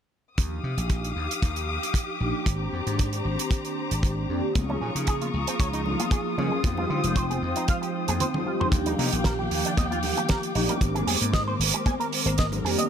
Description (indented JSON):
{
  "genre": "nu-disco, nu disco",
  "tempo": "115 BPM",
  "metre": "4/4",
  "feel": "swing 54% on 16ths",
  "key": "Eb major",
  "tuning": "A4 = 438 Hz",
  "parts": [
    { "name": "mellow synth brass", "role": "accompaniment", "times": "0.4-12.9 s", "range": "Eb3 to G5", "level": "-30 LUFS", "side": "right 1 dB", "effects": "chorus, ping-pong delay" },
    { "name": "warm studio string section", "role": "sustained chords", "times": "0.4-12.9 s", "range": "Eb3 to Eb6", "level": "-32 LUFS", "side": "left 3 dB", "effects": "sidechain pumping" },
    { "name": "slap bass", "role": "bass", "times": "0.4-12.7 s", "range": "F1 to D3", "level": "-29 LUFS", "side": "equal", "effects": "none" },
    { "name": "damped 70s drum kit", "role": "drums", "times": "0.4-12.9 s", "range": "hi-hat, snare drum, toms", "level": "-30 LUFS", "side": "right 5 dB", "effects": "none" },
    { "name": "kick drum", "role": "drums", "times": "0.4-12.5 s", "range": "none", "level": "-24 LUFS", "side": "equal", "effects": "none" },
    { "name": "congas", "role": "percussion", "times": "4.6-12.9 s", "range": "none", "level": "-34 LUFS", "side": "left 4 dB", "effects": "none" },
    { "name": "electric guitar with an envelope filter", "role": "riff", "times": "4.7-12.8 s", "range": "C4 to Ab5", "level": "-32 LUFS", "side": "right 3 dB", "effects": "ensemble chorus, vintage 12-bit sampler grit, ping-pong delay" }
  ],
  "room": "light reverb, small room ambience",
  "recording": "none",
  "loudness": "-23 LUFS",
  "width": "side -8 dB against mid",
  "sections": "0.4-8.7 A section; 8.7-12.9 B section",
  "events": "filter sweep on analog polysynth 0.4-8.7; drum fill 8.2-8.7",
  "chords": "0.4 Ebmaj9; 2.5 Abmaj9#11; 4.6 Db69; 6.6 Fm7; 8.7 Ebmaj9; 10.8 Abmaj9#11"
}